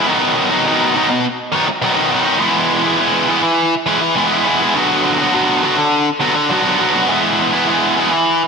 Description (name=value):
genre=rock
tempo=103 BPM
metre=4/4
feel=straight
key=E major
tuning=A4 = 441 Hz
part: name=tight distorted guitar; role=solo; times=0.0-8.4 s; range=B2 to F#4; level=-12 LUFS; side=equal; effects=distortion, slapback echo
room=wet lush hall reverb, RT60 2.0 s, digital ambience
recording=big arena sound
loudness=-12 LUFS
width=side -5 dB against mid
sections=0.0-8.5 A section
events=none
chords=0.1 B; 2.4 E; 4.8 Bm/D; 7.1 E